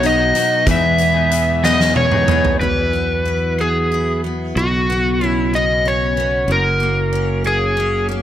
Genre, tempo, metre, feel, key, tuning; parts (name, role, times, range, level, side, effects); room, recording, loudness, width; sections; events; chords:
six-eight pop ballad; 62 BPM (dotted quarters); 6/8; straight; E major; A4 = 440 Hz
overdriven slide guitar; melody; 0.0-8.1 s; F#4 to E5; -17 LUFS; left 1 dB; tape echo
picked steel-string acoustic guitar; accompaniment; 0.0-8.2 s; F#2 to E4; -24 LUFS; equal; double-tracked left and right
mellow tonewheel organ; sustained chords; 0.0-8.2 s; B2 to F#4; -26 LUFS; right 3 dB; slow rotary speaker
electric guitar at the edge of break-up; arpeggios; 0.0-2.6 s; E3 to G#4; -25 LUFS; left 5 dB; tape echo
fingered electric bass; bass; 0.0-8.2 s; F#1 to E2; -21 LUFS; right 1 dB
huge arena drum kit; drums; 0.0-2.6 s; hi-hat, kick drum, snare drum, toms; -21 LUFS; right 1 dB
light reverb, studio ambience; -14 LUFS; side -11 dB against mid
0.0-2.6 A section; 2.6-8.2 B section
drum fill 1.6-2.6
0.0 B; 0.7 Emaj7; 2.6 Esus2; 4.6 Bsus2; 6.5 F#